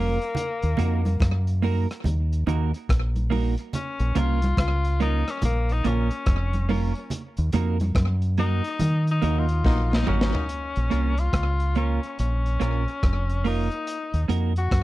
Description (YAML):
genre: roots reggae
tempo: 71 BPM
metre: 4/4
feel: swing 63% on 16ths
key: Bb minor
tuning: A4 = 440 Hz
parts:
  - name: clear tenor saxophone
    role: melody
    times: 0.0-14.8 s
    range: Bb3 to Gb4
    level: -30 LUFS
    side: left 4 dB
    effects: tape echo
  - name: clean electric guitar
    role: accompaniment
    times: 0.0-14.5 s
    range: Bb3 to Bb4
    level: -29 LUFS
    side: right 7 dB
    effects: wide subtle chorus, tape echo
  - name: deep dub fingered electric bass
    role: bass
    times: 0.0-14.8 s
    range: F1 to Eb3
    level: -23 LUFS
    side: equal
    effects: none
  - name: crunchy breakbeat drum kit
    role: drums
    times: 0.2-14.8 s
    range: hi-hat, kick drum, rim click, snare drum, toms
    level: -26 LUFS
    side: equal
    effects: slapback echo
  - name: congas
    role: percussion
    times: 0.3-10.3 s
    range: none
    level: -32 LUFS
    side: right 2 dB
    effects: none
  - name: warm horn section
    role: second line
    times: 9.2-10.4 s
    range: Gb3 to Eb4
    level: -32 LUFS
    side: left 3 dB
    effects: tape echo
room: little or no reverb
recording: dry, close 1970s-style studio recording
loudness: -22 LUFS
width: side -17 dB against mid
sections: 0.0-10.5 A section; 10.5-14.8 B section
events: tenor saxophone solo 0.0-10.5; band accent 7.1-10.5; drum fill 9.6-10.5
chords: 0.4 Ebm; 3.7 Bbm; 7.1 Ebm; 10.5 Bbm; 13.9 Ebm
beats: | 0.36 1.21 2.05 2.89 | 3.74 4.58 5.42 6.27 | 7.11 7.96 8.80 9.64 | 10.49 11.33 12.18 13.02 | 13.87 14.71